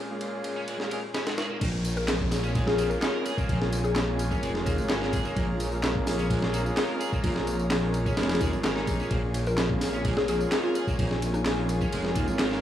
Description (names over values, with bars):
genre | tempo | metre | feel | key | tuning
breakbeat, breaks | 128 BPM | 4/4 | straight | Bb minor pentatonic | A4 = 441 Hz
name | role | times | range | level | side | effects
muted studio string section | sustained chords | 0.0-12.6 s | Bb2 to Bb5 | -37 LUFS | left 1 dB | sidechain pumping
warm horn section | stabs | 0.0-12.6 s | Ab3 to Ab4 | -34 LUFS | right 2 dB | tape echo
breakbeat sampler-style drum kit | drums | 0.2-12.6 s | crash cymbal, hi-hat, kick drum, ride cymbal, snare drum | -28 LUFS | equal | high-pass filter on cymbals, high-pass filter on snare, high-pass filter on hats, high-pass filter on kick, high-pass filter on room
high-gain distorted guitar | riff | 0.6-12.6 s | Ab3 to Bb4 | -38 LUFS | right 1 dB | distortion, vintage 12-bit sampler grit, tape echo
dark detuned saw bass | bass | 1.6-12.6 s | F1 to Eb2 | -29 LUFS | equal | none
punchy analog drum machine | drums | 1.6-12.5 s | handclaps, ride cymbal, tambourine | -39 LUFS | equal | none
downlifter | sound effects | 1.6-5.4 s | none | -43 LUFS | equal | none
mallet-like synth pluck | melody | 2.0-4.0, 9.5-12.0 s | Eb4 to Bb4 | -32 LUFS | left 3 dB | chorus, phaser, AM radio sound, tape echo
room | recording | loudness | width
little or no reverb | dry, gritty hardware recording, small room ambience | -24 LUFS | side -11 dB against mid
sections
0.0-1.6 A section; 1.6-12.6 B section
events
drop 1.6-12.6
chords
0.0 Bbm7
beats
0.21 0.68 1.15 | 1.61 2.08 2.55 3.02 | 3.49 3.96 4.43 4.89 | 5.36 5.83 6.30 6.77 | 7.24 7.71 8.18 8.64 | 9.11 9.58 10.05 10.52 | 10.99 11.46 11.93 12.39